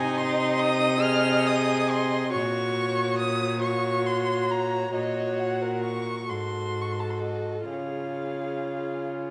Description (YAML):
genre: classical, slow romantic movement for string quartet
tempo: 42-48 BPM (dotted quarters)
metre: 6/8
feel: rubato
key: unclear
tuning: A4 = 440 Hz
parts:
  - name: dark violin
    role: melody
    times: 0.0-9.1 s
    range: Eb5 to F6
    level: -32 LUFS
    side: equal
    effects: none
  - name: dark violin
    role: second line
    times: 0.0-9.3 s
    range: Ab4 to Eb5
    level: -33 LUFS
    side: equal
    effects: none
  - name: warm viola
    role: accompaniment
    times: 0.0-9.3 s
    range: Eb4 to Ab4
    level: -33 LUFS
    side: equal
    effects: none
  - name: rich cello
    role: bass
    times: 0.0-9.3 s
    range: Ab2 to Db3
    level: -31 LUFS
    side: equal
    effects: none
room: wet recital hall reverb, RT60 1.8 s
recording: nothing above 10.9 kHz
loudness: -26 LUFS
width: mono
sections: 0.0-9.3 A section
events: none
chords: 0.0 Ab/C; 2.3 Gb/Bb; 6.3 Ab7b9; 7.7 Db